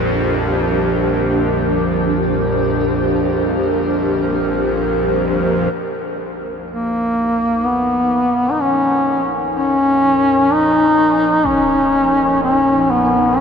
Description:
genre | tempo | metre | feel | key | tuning
dark ambient drone | free time | none | none | unclear | A4 = 438 Hz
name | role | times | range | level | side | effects
granular cloud pad | sustained chords | 0.0-13.4 s | F3 to Db5 | -20 LUFS | equal | built-in reverb
bowed-like drone | drone | 0.0-13.4 s | Bb1 to F2 | -22 LUFS | equal | built-in reverb
mellow duduk | melody | 6.7-13.4 s | Bb3 to Eb4 | -13 LUFS | left 1 dB | diffuse ambient delay
impact | percussion | 11.4-11.6 s | none | -33 LUFS | left 1 dB | low-pass filter on sfx
room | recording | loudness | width
wet huge ambient reverb, RT60 8.8 s | none | -14 LUFS | side -6 dB against mid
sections
0.0-5.7 A section; 5.7-13.4 B section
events
fade-in on synth drone 5.7-13.4; fade-in on ambient pad 5.7-13.4; fade-in on impacts and reversed cymbals 5.7-13.4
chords
0.0 Gm; 5.7 Bbm

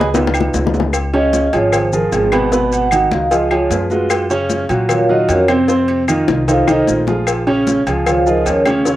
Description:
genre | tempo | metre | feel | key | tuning
Afro-Cuban jazz | 152 BPM | 4/4 | straight | Db major | A4 = 441 Hz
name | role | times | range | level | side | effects
warm baby grand piano | accompaniment | 0.0-9.0 s | Cb3 to Db5 | -16 LUFS | right 1 dB | cassette tape
upright bass | bass | 0.0-9.0 s | Ab1 to Bb2 | -21 LUFS | left 1 dB | none
bongos and cowbell | percussion | 0.0-9.0 s | none | -22 LUFS | left 5 dB | none
congas | percussion | 0.1-9.0 s | none | -26 LUFS | left 2 dB | none
maracas | percussion | 0.1-9.0 s | none | -30 LUFS | left 8 dB | none
timbales and agogo bells | percussion | 0.1-8.9 s | none | -24 LUFS | right 2 dB | none
claves | percussion | 0.3-8.9 s | none | -26 LUFS | left 7 dB | none
vibraphone with medium mallets | melody | 1.1-8.6 s | C4 to Gb5 | -16 LUFS | right 1 dB | cassette tape
room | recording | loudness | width
moderate studio reverb, RT60 0.6 s | home recording on cassette | -12 LUFS | side -14 dB against mid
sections
0.9-9.0 A section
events
drum fill 0.0-0.9, 6.3-7.3; vibraphone solo 0.9-9.0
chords
0.1 C#7; 0.9 Db; 2.5 Abm7; 3.3 Db7; 4.1 Gbmaj7; 5.7 F7; 7.3 Bbm11

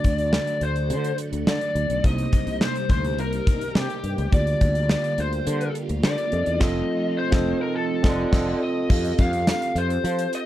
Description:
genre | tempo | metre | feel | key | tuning
1980s-style pop | 105 BPM | 4/4 | straight | unclear | A4 = 440 Hz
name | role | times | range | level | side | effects
lead guitar through a small cranked amp | melody | 0.0-10.5 s | G4 to F5 | -27 LUFS | left 2 dB | overdrive
mellow tine electric piano | accompaniment | 0.0-10.5 s | C3 to F5 | -28 LUFS | right 3 dB | none
phased string machine | sustained chords | 0.0-8.9 s | C3 to A4 | -33 LUFS | equal | ensemble chorus, phaser
sustaining fretless electric bass | bass | 0.0-10.3 s | F1 to F3 | -26 LUFS | equal | none
gated 80s drum kit | drums | 0.0-10.5 s | crash cymbal, hi-hat, kick drum, snare drum, tambourine | -22 LUFS | equal | none
room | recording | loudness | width
little or no reverb | none | -20 LUFS | side -13 dB against mid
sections
0.0-8.9 A section; 8.9-10.5 B section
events
band accent 6.6-8.9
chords
0.0 D; 2.0 Cm7; 4.3 Bb6/D; 6.3 F7; 8.9 Fadd9

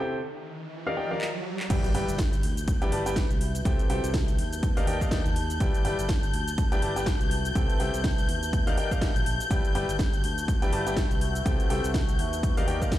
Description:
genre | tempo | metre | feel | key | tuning
piano house | 123 BPM | 4/4 | swing 57% on 16ths | G major | A4 = 440 Hz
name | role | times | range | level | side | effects
clear grand piano | riff | 0.0-13.0 s | C3 to A5 | -32 LUFS | left 1 dB | sidechain pumping, low-pass filter, digital delay
riser and impact | sound effects | 0.0-3.7 s | none | -35 LUFS | right 1 dB | none
house drum kit | drums | 1.2-13.0 s | crash cymbal, handclaps, hi-hat, shaker, snare drum | -37 LUFS | equal | overdrive
warm studio violin section | sustained chords | 1.7-13.0 s | G6 | -35 LUFS | left 5 dB | sidechain pumping
fingered electric bass | bass | 1.7-13.0 s | G1 to Eb2 | -31 LUFS | equal | sidechain pumping
electronic kick drum | drums | 1.7-13.0 s | none | -26 LUFS | equal | overdrive
deep dark ambient pad | texture | 2.5-13.0 s | F#4 to A5 | -38 LUFS | equal | chorus, built-in reverb, sidechain pumping
room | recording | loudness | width
digital ambience | played on a big sound system in a bare room, stone room reverb | -24 LUFS | side -14 dB against mid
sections
0.0-1.7 A section; 1.7-13.0 B section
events
break 0.0-1.7; riser 0.0-1.7; drum fill 1.2-1.7; drop 1.7-13.0; impact 1.7-3.7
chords
0.0 C6; 0.7 Ebmaj9; 1.7 G6; 3.4 C6; 4.6 Ebmaj9; 5.6 G6; 7.3 C6; 8.5 Ebmaj9; 9.5 G6; 11.2 C6; 12.4 Ebmaj9

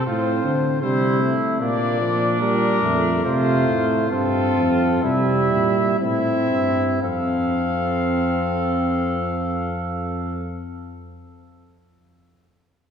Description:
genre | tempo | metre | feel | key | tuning
classical, imitative canzona for brass ensemble | 57-80 BPM | 4/4 | straight | F major | A4 = 439 Hz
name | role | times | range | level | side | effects
clear cornet | melody | 0.0-10.6 s | A4 to F5 | -26 LUFS | left 4 dB | none
warm trumpet | second line | 0.0-10.7 s | D4 to A4 | -26 LUFS | right 3 dB | none
mellow bass trombone | bass | 0.0-10.6 s | F2 to D3 | -23 LUFS | equal | none
mellow trombone | accompaniment | 0.1-10.6 s | F3 to C4 | -23 LUFS | right 1 dB | none
room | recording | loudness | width
wet church reverb, RT60 3.0 s | heard from further back in the room | -18 LUFS | side -7 dB against mid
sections
0.0-7.0 A section; 7.0-11.2 B section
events
slowing down 0.0-7.0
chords
0.0 F/A; 1.6 Bb; 3.2 F; 5.0 C; 7.0 F

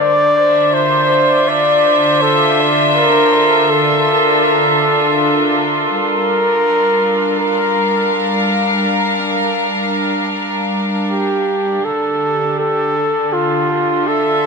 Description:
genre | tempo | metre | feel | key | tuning
ambient dub | 81 BPM | 4/4 | swing 54% on 16ths | G dorian | A4 = 441 Hz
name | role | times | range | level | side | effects
trumpet with bucket mute | melody | 0.0-14.5 s | F4 to D5 | -15 LUFS | equal | dub echo
warm studio string section | sustained chords | 0.0-14.5 s | D3 to F5 | -16 LUFS | equal | none
room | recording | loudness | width
wet huge ambient reverb, RT60 4.5 s | none | -12 LUFS | side -4 dB against mid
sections
0.0-5.9 A section; 5.9-14.5 B section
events
none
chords
0.0 Dmadd9; 5.9 Gm7; 11.9 Dmadd9

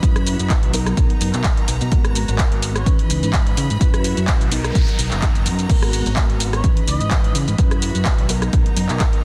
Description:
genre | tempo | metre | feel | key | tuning
filtered disco house | 127 BPM | 4/4 | swing 55% on 16ths | unclear | A4 = 440 Hz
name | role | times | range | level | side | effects
mellow reed electric piano | accompaniment | 0.0-9.2 s | E3 to B4 | -28 LUFS | equal | fast tremolo, phaser, sidechain pumping
clear studio string section | sustained chords | 0.0-9.2 s | E3 to B5 | -34 LUFS | equal | sidechain pumping
fingered electric bass | bass | 0.0-9.0 s | F#1 to C#3 | -25 LUFS | equal | sidechain pumping
electronic kick drum | drums | 0.0-9.1 s | none | -20 LUFS | equal | none
punchy analog drum machine | drums | 0.0-9.2 s | crash cymbal, handclaps, hi-hat, rim click, shaker | -27 LUFS | equal | sidechain pumping on hats, sidechain pumping on perc, sidechain pumping on cymbals
muted trumpet section | melody | 2.8-2.9, 6.5-7.3 s | C#5 to D#5 | -35 LUFS | equal | sidechain pumping, delay
noise sweep | sound effects | 4.4-5.7 s | none | -36 LUFS | equal | none
room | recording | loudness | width
little or no reverb | dense, heavily limited modern master | -18 LUFS | mono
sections
0.0-9.2 A section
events
noise sweep 4.4-5.7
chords
0.0 F#7sus4; 0.7 Bmaj7; 1.9 G#m9; 2.9 C#m9; 3.8 F#7sus4; 4.5 Bmaj7; 5.7 G#m9; 6.6 C#m9; 7.6 F#7sus4; 8.3 Bmaj7

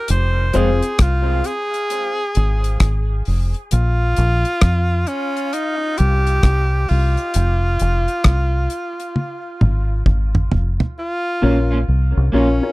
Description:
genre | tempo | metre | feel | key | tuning
dub reggae | 66 BPM | 4/4 | swing 63% on 16ths | F minor | A4 = 440 Hz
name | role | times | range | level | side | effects
clear tenor saxophone | melody | 0.0-12.7 s | Db4 to C5 | -22 LUFS | equal | dub echo
deep dub fingered electric bass | bass | 0.1-12.6 s | F1 to F2 | -16 LUFS | equal | none
damped 70s drum kit | drums | 0.1-11.0 s | hi-hat, kick drum, rim click, toms | -18 LUFS | equal | none
electric guitar at the edge of break-up | accompaniment | 0.5-0.7, 11.4-12.5 s | Ab3 to F4 | -24 LUFS | right 2 dB | lush chorus, dub echo
dark upright piano | stabs | 0.5-0.8, 11.4-12.7 s | C4 to Db5 | -22 LUFS | left 3 dB | dub echo
room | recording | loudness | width
little or no reverb | dry, close 1970s-style studio recording | -16 LUFS | side -21 dB against mid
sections
0.0-11.0 A section; 11.0-12.7 B section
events
break 0.0-11.0; drum fill 9.2-11.0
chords
0.1 Fm; 3.7 Bb5; 5.5 C5; 7.3 Fm; 11.0 Bbm

